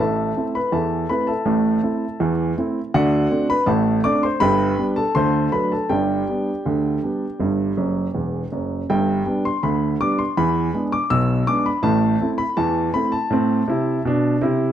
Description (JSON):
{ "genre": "ragtime piano", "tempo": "81 BPM", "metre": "2/4", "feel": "straight", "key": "G major", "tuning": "A4 = 441 Hz", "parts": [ { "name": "warm upright piano", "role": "solo", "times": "0.0-14.7 s", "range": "E1 to E6", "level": "-18 LUFS", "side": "equal", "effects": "slapback echo" } ], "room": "studio reverb", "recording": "dry, close 1970s-style studio recording", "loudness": "-18 LUFS", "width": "side -10 dB against mid", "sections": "0.0-8.9 A section; 8.9-14.7 A section", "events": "upright piano fill 7.8-8.9", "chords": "0.0 Am; 2.9 D7; 4.4 G; 5.2 D7; 5.9 G; 10.4 E7; 11.8 Am", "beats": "0.73 | 1.47 2.21 | 2.94 3.68 | 4.42 5.16 | 5.90 6.64 | 7.39 8.14 | 8.88 9.63 | 10.37 11.10 | 11.84 12.58 | 13.32 14.05" }